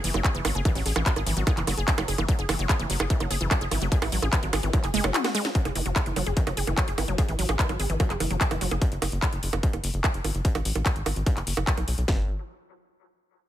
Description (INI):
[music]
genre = psychedelic trance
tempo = 147 BPM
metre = 4/4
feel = straight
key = F# minor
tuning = A4 = 440 Hz
[part]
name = wide unison pluck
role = riff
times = 0.0-8.8, 12.1-12.3 s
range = E3 to G#4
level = -30 LUFS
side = right 1 dB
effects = auto-pan, sidechain pumping, dub echo
[part]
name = tight sequencer bass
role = bass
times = 0.0-12.3 s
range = F#1 to B1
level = -28 LUFS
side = equal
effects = none
[part]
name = techno drum kit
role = drums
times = 0.0-12.1 s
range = bongos, handclaps, hi-hat, snare drum, toms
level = -28 LUFS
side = right 2 dB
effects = studio reverb
[part]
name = techno drum kit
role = drums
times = 0.2-12.2 s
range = kick drum, snare drum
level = -25 LUFS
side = equal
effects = distortion, studio reverb
[sound]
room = little or no reverb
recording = none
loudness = -23 LUFS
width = side -12 dB against mid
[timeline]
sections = 0.0-5.6 A section; 5.6-12.1 B section; 12.1-13.5 C section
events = drop 0.0-5.6; drum fill 5.1-5.6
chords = 0.0 F#7sus2; 5.6 F#sus2; 12.1 N.C.